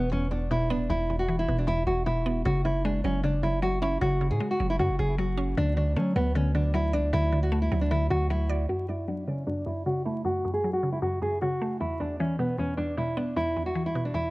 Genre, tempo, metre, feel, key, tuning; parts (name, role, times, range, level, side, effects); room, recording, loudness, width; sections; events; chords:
hip hop, trap; 154 BPM; 4/4; half-time; F# minor; A4 = 440 Hz
nylon-string guitar; melody; 0.0-14.3 s; B3 to G#4; -28 LUFS; equal; low-pass filter, analog delay
mallet-like synth pluck; accompaniment; 0.0-14.3 s; E2 to D5; -30 LUFS; equal; chorus, low-pass filter, analog delay
long sustained 808-style bass; bass; 0.0-8.7 s; D1 to F#3; -28 LUFS; equal
light reverb, small room ambience; echo-heavy mix, vinyl crackle; -25 LUFS; side -20 dB against mid
0.0-8.7 A section; 8.7-14.3 B section
filter sweep 8.7-14.3
0.0 E5; 2.5 F#sus2; 5.6 D; 8.7 F#m; 11.8 E5